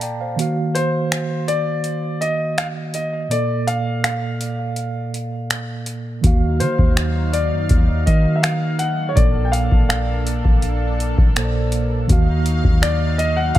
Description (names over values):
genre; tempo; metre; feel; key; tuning
contemporary R&B; 82 BPM; 4/4; straight; unclear; A4 = 444 Hz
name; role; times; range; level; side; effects
mellow tine electric piano; accompaniment; 0.0-13.6 s; Bb2 to Bb5; -23 LUFS; right 2 dB; medium stereo tremolo
booming analog drum machine; drums; 0.0-13.6 s; finger snaps, hi-hat, kick drum; -18 LUFS; equal; none
warm grand piano; melody; 0.7-13.6 s; C5 to G5; -24 LUFS; left 1 dB; tape echo
lush unison pad; sustained chords; 6.2-13.6 s; Gb3 to F5; -28 LUFS; left 1 dB; chorus
soft 808-style bass; bass; 6.2-13.6 s; Bb1 to Eb3; -21 LUFS; equal; none
room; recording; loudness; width
digital ambience; none; -17 LUFS; side -13 dB against mid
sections
0.0-13.6 A section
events
break 0.0-6.2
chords
0.4 Ebmadd9; 3.3 Bbmaj7; 6.2 Ebmadd9; 9.2 Bbmaj7; 12.1 Ebmadd9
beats
| 0.39 1.12 1.85 2.58 | 3.31 4.04 4.78 5.51 | 6.24 6.97 7.70 8.44 | 9.17 9.90 10.63 11.36 | 12.09 12.82 13.56